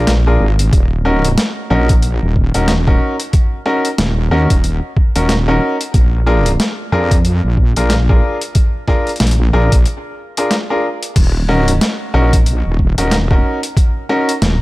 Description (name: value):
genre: glitch hop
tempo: 92 BPM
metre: 4/4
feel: swing 59% on 16ths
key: Eb minor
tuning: A4 = 439 Hz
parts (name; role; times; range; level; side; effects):
- bright grand piano; stabs; 0.0-14.3 s; Db4 to Bb4; -18 LUFS; left 1 dB; vintage 12-bit sampler grit, sidechain pumping, tape echo
- wobble bass; bass; 0.0-14.6 s; Eb1 to F2; -14 LUFS; equal; chorus, tube saturation
- boom bap sampler-style drum kit; drums; 0.1-14.6 s; crash cymbal, hi-hat, snare drum; -20 LUFS; equal; overdrive
- electronic kick drum; drums; 0.7-13.9 s; none; -13 LUFS; equal; overdrive
room: digital ambience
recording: none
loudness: -12 LUFS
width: side -19 dB against mid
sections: 0.0-14.6 A section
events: break 9.9-11.2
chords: 0.0 Bb7; 0.7 Ebm7; 5.9 Bb7; 11.2 Ebm7